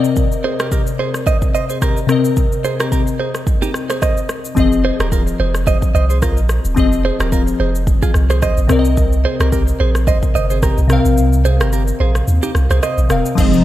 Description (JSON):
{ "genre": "afrobeats", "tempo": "109 BPM", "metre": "4/4", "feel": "swing 55% on 16ths", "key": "F minor", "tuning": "A4 = 440 Hz", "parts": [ { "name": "glassy digital keys", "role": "accompaniment", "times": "0.0-13.6 s", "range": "C3 to F5", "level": "-19 LUFS", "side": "left 4 dB", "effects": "chorus" }, { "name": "afro-pop drum kit", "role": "drums", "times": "0.0-13.6 s", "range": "crash cymbal, kick drum, rim click, shaker", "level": "-18 LUFS", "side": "equal", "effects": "none" }, { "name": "direct-recorded clean electric guitar", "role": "riff", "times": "0.4-13.0 s", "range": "Eb4 to Eb5", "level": "-22 LUFS", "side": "right 5 dB", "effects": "spring reverb, ping-pong delay" }, { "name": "punchy sub bass", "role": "bass", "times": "4.6-13.6 s", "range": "Eb1 to Eb2", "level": "-16 LUFS", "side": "equal", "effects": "none" }, { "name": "hollow soft pad", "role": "sustained chords", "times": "13.4-13.6 s", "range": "C3 to Eb4", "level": "-14 LUFS", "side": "right 2 dB", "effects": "ensemble chorus" } ], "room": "light reverb", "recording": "none", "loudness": "-13 LUFS", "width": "side -14 dB against mid", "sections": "0.0-13.4 A section", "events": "synth keys fill 0.0; kick muted 11.2-13.4", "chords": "0.0 Cm7; 4.6 Fm7" }